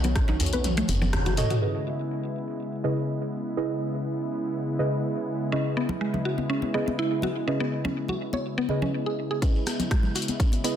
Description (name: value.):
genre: afro house.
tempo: 123 BPM.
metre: 4/4.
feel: straight.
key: C# minor.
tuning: A4 = 440 Hz.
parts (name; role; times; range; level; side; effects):
warm analog pad; sustained chords; 0.0-10.8 s; C#3 to F#4; -31 LUFS; left 1 dB; lush chorus, sidechain pumping.
mallet-like synth pluck; arpeggios; 0.0-1.6, 5.5-10.8 s; G#3 to C#5; -30 LUFS; equal; chorus, sidechain pumping, tape echo.
deep mellow chord stab; stabs; 0.0-10.8 s; C#3 to D#5; -31 LUFS; right 2 dB; chorus, sidechain pumping, tape echo.
woody FM bass; bass; 0.0-1.4, 9.4-10.8 s; F#1 to C#2; -27 LUFS; equal; sidechain pumping, high-pass filter.
house drum kit; drums; 0.0-1.6, 9.4-10.7 s; hi-hat, rim click, toms; -29 LUFS; equal; low-pass filter on hats, soft clipping on snare, low-pass filter on snare, low-pass filter on toms, low-pass filter on room.
congas; percussion; 0.0-1.4, 5.9-10.6 s; none; -32 LUFS; left 1 dB; none.
shekere; percussion; 0.0-1.6, 9.4-10.7 s; none; -39 LUFS; left 2 dB; none.
electronic kick drum; drums; 0.2-0.3, 9.4-10.5 s; none; -23 LUFS; equal; none.
djembe; percussion; 0.2-1.5 s; none; -33 LUFS; right 1 dB; none.
room: moderate plate reverb, RT60 1.3 s, digital ambience.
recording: dense, heavily limited modern master.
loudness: -24 LUFS.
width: side -9 dB against mid.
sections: 0.0-1.6 A section; 1.6-9.4 B section; 9.4-10.8 C section.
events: kick drops out 0.6-1.6; drum fill 0.6-1.6; band accent 1.1; filter sweep on drum 1.6-9.4; build-up 9.4-10.8.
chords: 0.0 B7; 1.6 C#m7.